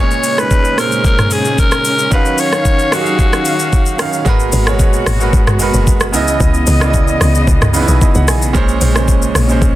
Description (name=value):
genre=amapiano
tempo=112 BPM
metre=4/4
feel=straight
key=G# minor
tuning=A4 = 440 Hz
part: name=raspy alto saxophone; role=melody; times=0.0-4.0 s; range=F#4 to C#5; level=-16 LUFS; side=left 1 dB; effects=tape echo
part: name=bright concert grand piano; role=accompaniment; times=0.0-9.8 s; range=A#2 to B5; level=-18 LUFS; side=right 5 dB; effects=none
part: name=muted studio string section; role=sustained chords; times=0.0-9.8 s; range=A#2 to E#5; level=-20 LUFS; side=left 2 dB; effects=sidechain pumping
part: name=smooth R&B drum kit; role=drums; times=0.1-9.7 s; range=hi-hat, kick drum, rim click, shaker, toms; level=-14 LUFS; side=equal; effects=soft clipping on snare
part: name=woody log drum bass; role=bass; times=4.3-9.8 s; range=F#1 to C#2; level=-14 LUFS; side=equal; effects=none
room=little or no reverb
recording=dense, heavily limited modern master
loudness=-10 LUFS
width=side -15 dB against mid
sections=0.0-4.3 A section; 4.3-9.8 B section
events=drop 4.3-9.8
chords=0.0 A#m9; 2.1 D#m9; 4.3 G#m9; 6.1 C#m9; 8.5 A#m9